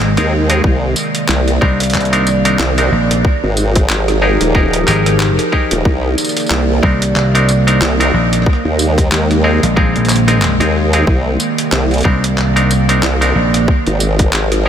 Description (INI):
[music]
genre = glitch hop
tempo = 92 BPM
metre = 4/4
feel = swing 58% on 16ths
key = C minor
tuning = A4 = 438 Hz
[part]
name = warbly tape-like pad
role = sustained chords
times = 0.0-14.7 s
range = C3 to D5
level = -18 LUFS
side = right 2 dB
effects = chorus, built-in reverb, sidechain pumping
[part]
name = clav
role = stabs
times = 0.0-14.7 s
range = C4 to Bb4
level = -18 LUFS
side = equal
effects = sidechain pumping, tape echo
[part]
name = vintage slap bass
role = bass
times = 0.0-13.7 s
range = Ab1 to C2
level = -14 LUFS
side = equal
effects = none
[part]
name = formant-sweep wobble bass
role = bass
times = 0.2-14.7 s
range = Eb1 to Eb2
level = -14 LUFS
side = equal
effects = chorus, tube saturation
[part]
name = boom bap sampler-style drum kit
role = drums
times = 0.2-14.6 s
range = handclaps, hi-hat, rim click, tambourine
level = -20 LUFS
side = equal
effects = overdrive
[part]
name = electronic kick drum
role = drums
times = 0.6-14.3 s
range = none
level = -13 LUFS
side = equal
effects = overdrive
[sound]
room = moderate huge ambient reverb, RT60 9.2 s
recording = dreamy mix soaked in reverb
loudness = -11 LUFS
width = side -9 dB against mid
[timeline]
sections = 0.0-14.7 A section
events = none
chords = 0.0 Bb9sus4; 0.6 Cm9; 3.2 Fm11; 5.9 Cm9; 8.5 Bb9sus4; 11.1 Cm9; 13.7 Fm11